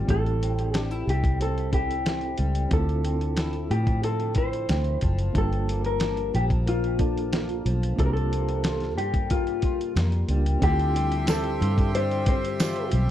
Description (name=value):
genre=indie pop, bedroom pop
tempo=91 BPM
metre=4/4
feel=straight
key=D minor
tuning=A4 = 442 Hz
part: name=flamenco guitar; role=accompaniment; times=0.0-13.1 s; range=G2 to F4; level=-32 LUFS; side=left 4 dB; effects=analog chorus, warbly pitch drift
part: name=reed electric piano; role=accompaniment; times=0.0-13.1 s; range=Bb3 to A5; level=-35 LUFS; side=right 4 dB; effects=fast tremolo, cassette tape
part: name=mellow electric guitar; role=melody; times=0.1-12.9 s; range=F4 to C5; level=-29 LUFS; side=left 1 dB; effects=wide subtle chorus, tape echo
part: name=vintage muted fingered electric bass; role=bass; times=0.1-13.1 s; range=F#1 to A2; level=-26 LUFS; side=equal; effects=none
part: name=dusty soul sampler-style drum kit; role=drums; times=0.1-13.1 s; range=hi-hat, kick drum, snare drum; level=-26 LUFS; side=equal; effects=none
part: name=accordion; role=sustained chords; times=10.6-13.1 s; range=G4 to C6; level=-34 LUFS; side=right 3 dB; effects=none
part: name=tambourine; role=percussion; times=11.3-12.8 s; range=none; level=-39 LUFS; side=right 12 dB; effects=none
room=studio reverb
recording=dry, close 1970s-style studio recording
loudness=-22 LUFS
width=side -12 dB against mid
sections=0.0-10.6 A section; 10.6-13.1 B section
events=none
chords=0.1 Am7; 2.7 Dm9; 5.4 Gm7; 8.0 C7sus4; 10.6 Dm11